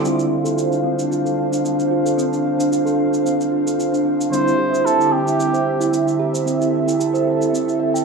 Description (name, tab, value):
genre	organic downtempo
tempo	112 BPM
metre	4/4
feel	straight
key	D minor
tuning	A4 = 440 Hz
part	mellow tine electric piano	accompaniment	0.0-8.0 s	D3 to F4	-27 LUFS	equal	overdrive, fast stereo tremolo, low-pass filter, tape echo
part	airy breathy pad	sustained chords	0.0-8.0 s	D3 to F5	-22 LUFS	right 1 dB	chorus
part	steel tongue drum	arpeggios	0.0-8.0 s	C4 to G5	-19 LUFS	right 2 dB	low-pass filter, tape echo
part	shaker	drums	0.0-8.0 s	none	-33 LUFS	right 1 dB	none
part	trumpet with cup mute	melody	4.3-6.2 s	G4 to C5	-20 LUFS	right 2 dB	tape echo
room	wet plate reverb, RT60 1.4 s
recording	rough home demo mix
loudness	-16 LUFS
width	side -4 dB against mid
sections	0.0-8.0 A section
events	filter sweep on tine electric piano 0.0-8.0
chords	0.0 Dm7; 4.3 C/D